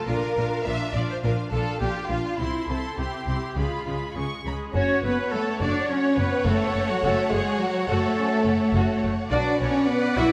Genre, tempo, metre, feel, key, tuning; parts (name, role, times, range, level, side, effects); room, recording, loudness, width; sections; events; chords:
cinematic; 104 BPM; 4/4; straight; F# minor from 4.7 s; A4 = 440 Hz
clear studio violin section; melody; 0.0-10.3 s; F#4 to C#6; -36 LUFS; equal
warm symphonic violin section; second line; 0.0-10.3 s; E4 to F#5; -32 LUFS; equal
rich symphonic viola section; accompaniment; 0.0-10.3 s; G#3 to C#5; -34 LUFS; equal
rich studio double bass section; bass; 0.1-10.3 s; F#1 to C#2; -31 LUFS; equal
rich symphonic cello section; bass; 0.1-10.3 s; Bb2 to E4; -32 LUFS; equal
bright concert flute; second line; 4.7-10.3 s; F#4 to E5; -33 LUFS; equal
clear trombone section; sustained chords; 4.7-9.5 s; F#3 to D4; -37 LUFS; equal
mellow French horn section; sustained chords; 4.7-10.3 s; F#3 to E4; -28 LUFS; equal
wet scoring stage reverb, RT60 1.6 s; -24 LUFS; mono
0.0-4.7 A section; 4.7-10.3 B section
0.1 Bb; 2.4 C; 3.6 C#7; 4.7 F#m; 9.3 Bm